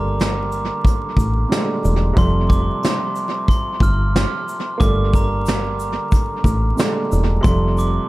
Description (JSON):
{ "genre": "hip hop, boom-bap hip-hop", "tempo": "91 BPM", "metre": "4/4", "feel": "swing 63% on 16ths", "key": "G minor", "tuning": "A4 = 440 Hz", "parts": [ { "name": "glockenspiel with hard plastic mallets", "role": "melody", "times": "0.0-8.1 s", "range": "Bb5 to F6", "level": "-25 LUFS", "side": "equal", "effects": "high-pass filter, low-pass filter, tape echo" }, { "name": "warm upright piano", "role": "accompaniment", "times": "0.0-8.1 s", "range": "Bb2 to Bb3", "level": "-24 LUFS", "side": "right 2 dB", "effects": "high-pass filter, low-pass filter, tape echo" }, { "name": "deep dub fingered electric bass", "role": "bass", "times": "0.0-8.0 s", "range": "E1 to A1", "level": "-19 LUFS", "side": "equal", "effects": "none" }, { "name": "soft brush drum kit", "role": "drums", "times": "0.2-8.0 s", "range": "hi-hat, kick drum, shaker, snare drum", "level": "-19 LUFS", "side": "equal", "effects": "tape echo" }, { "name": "tube shaker", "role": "percussion", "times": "4.8-8.0 s", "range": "none", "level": "-41 LUFS", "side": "left 12 dB", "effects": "none" } ], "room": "studio ambience", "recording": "echo-heavy mix, vinyl crackle", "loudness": "-16 LUFS", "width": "side -18 dB against mid", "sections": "0.0-8.1 A section", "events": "none", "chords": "0.0 Gmadd9; 2.2 Fadd9; 4.8 Gmadd9; 7.4 Fadd9" }